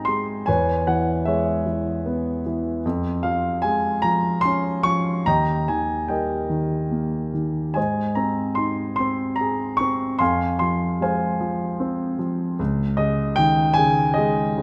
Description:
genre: classical, lyrical solo piano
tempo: 75 BPM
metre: 3/4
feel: rubato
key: unclear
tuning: A4 = 440 Hz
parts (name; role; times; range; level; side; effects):
- warm concert grand piano; solo; 0.0-14.6 s; Db2 to Db6; -22 LUFS; equal; none
room: moderate concert hall reverb, RT60 1.9 s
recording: none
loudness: -22 LUFS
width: mono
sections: 0.0-14.6 A section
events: none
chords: 0.5 E6; 2.8 Db/F; 5.3 Eb; 7.8 Ab; 10.2 Fm; 12.6 Dbsus2

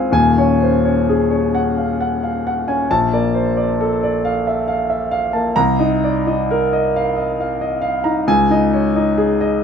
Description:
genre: classical, impressionist solo piano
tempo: 66 BPM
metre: 3/4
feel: uneven beats, rubato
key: unclear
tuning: A4 = 440 Hz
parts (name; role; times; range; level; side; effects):
- warm concert grand piano; solo; 0.0-9.6 s; Eb1 to Bb5; -14 LUFS; left 1 dB; none
room: light reverb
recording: none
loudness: -15 LUFS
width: side -7 dB against mid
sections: 0.0-9.6 A section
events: none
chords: 0.1 Ebm11; 2.9 Bbmaj7; 5.5 Cm11; 8.3 Dbsus2

